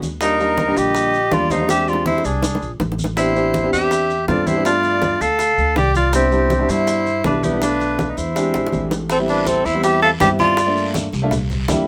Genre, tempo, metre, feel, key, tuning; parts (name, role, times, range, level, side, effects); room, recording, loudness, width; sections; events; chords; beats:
Afro-Cuban jazz; 162 BPM; 4/4; straight; A4 = 437 Hz
clear grand piano; accompaniment; 0.0-11.9 s; B2 to G5; -24 LUFS; equal
upright bass; bass; 0.0-11.9 s; A1 to G2; -26 LUFS; equal
bongos; percussion; 0.0-11.9 s; -28 LUFS; equal
congas; percussion; 0.0-11.9 s; -29 LUFS; equal
maracas; percussion; 0.0-11.9 s; -36 LUFS; equal
warm tenor saxophone; melody; 0.2-10.9 s; B3 to A4; -21 LUFS; equal
breathy bright jazz flute; second line; 0.2-10.9 s; G4 to F5; -27 LUFS; equal
guiro; percussion; 9.1-11.9 s; -36 LUFS; equal
light reverb; -18 LUFS; mono
0.0-9.1 A section; 9.1-11.9 B section
drum fill 1.7-3.2, 8.5-9.1; grand piano fill 11.5-11.9
0.2 Ebmaj7; 1.7 E7alt; 3.2 Am11; 4.7 G7; 6.1 Cmaj9; 7.6 Bm7b5; 8.4 E7alt; 9.1 Am9; 10.6 Gm7; 11.3 C7
| 0.21 0.58 0.95 1.32 | 1.69 2.06 2.43 2.80 | 3.17 3.54 3.91 4.28 | 4.65 5.03 5.39 5.77 | 6.14 6.51 6.88 7.25 | 7.62 7.99 8.36 8.73 | 9.10 9.47 9.84 10.21 | 10.58 10.95 11.32 11.69